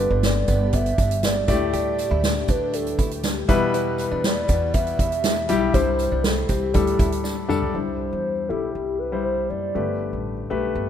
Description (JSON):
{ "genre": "piano-driven pop", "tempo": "120 BPM", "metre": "4/4", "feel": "straight", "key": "unclear", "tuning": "A4 = 440 Hz", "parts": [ { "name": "hollow clarinet-like synth lead", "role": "melody", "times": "0.0-10.2 s", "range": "G4 to E5", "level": "-26 LUFS", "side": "equal", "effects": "chorus" }, { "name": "warm baby grand piano", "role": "accompaniment", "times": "0.0-10.9 s", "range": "G2 to D5", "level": "-25 LUFS", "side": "left 5 dB", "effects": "none" }, { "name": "airy breathy pad", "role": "sustained chords", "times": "0.0-7.7 s", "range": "A2 to G4", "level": "-36 LUFS", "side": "left 1 dB", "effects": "none" }, { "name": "upright bass", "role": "bass", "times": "0.0-10.9 s", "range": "F#1 to E2", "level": "-27 LUFS", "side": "right 1 dB", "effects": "none" }, { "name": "direct-recorded clean electric guitar", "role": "riff", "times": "0.1-7.6 s", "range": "B3 to G4", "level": "-35 LUFS", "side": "right 6 dB", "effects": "none" }, { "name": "soft-mallet drum kit", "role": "drums", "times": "0.2-7.7 s", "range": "hi-hat, kick drum, snare drum, toms", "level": "-24 LUFS", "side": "right 1 dB", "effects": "none" }, { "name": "tambourine", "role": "percussion", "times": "0.2-7.6 s", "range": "none", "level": "-41 LUFS", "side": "left 7 dB", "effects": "none" } ], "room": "light reverb, small room reverb", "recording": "rough home demo mix", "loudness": "-20 LUFS", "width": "side -9 dB against mid", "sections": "0.0-7.7 A section; 7.7-10.9 B section", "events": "drum fill 7.2-7.7", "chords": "0.0 G; 1.5 Dsus4; 3.5 Em; 5.7 C; 6.7 Dsus4; 7.7 C; 9.8 Gadd9" }